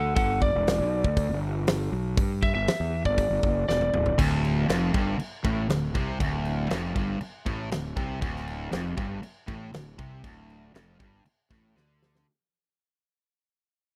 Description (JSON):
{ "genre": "blues rock power trio and southern rock", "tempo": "119 BPM", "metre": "4/4", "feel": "straight", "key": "unclear", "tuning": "A4 = 440 Hz", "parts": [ { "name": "lightly driven lead guitar", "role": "second line", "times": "0.0-4.2 s", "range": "A4 to F#5", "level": "-29 LUFS", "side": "equal", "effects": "none" }, { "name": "fuzz fingered electric bass", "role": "bass", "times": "0.0-12.2 s", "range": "D1 to G2", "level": "-32 LUFS", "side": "equal", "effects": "overdrive" }, { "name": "huge arena drum kit", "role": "drums", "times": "0.2-12.3 s", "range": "crash cymbal, hi-hat, kick drum, snare drum, toms", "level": "-31 LUFS", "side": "equal", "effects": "none" }, { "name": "overdriven electric guitar", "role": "riff", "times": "4.2-12.3 s", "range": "D2 to D3", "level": "-31 LUFS", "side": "equal", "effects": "none" } ], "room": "little or no reverb", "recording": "dry, close 1970s-style studio recording", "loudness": "-27 LUFS", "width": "mono", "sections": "0.0-4.2 A section; 4.2-12.3 B section", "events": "lead electric guitar solo 0.0-4.2; drum fill 3.7-4.2, 11.8-12.3; fade-out 4.2-12.3", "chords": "0.2 G5; 4.2 D5" }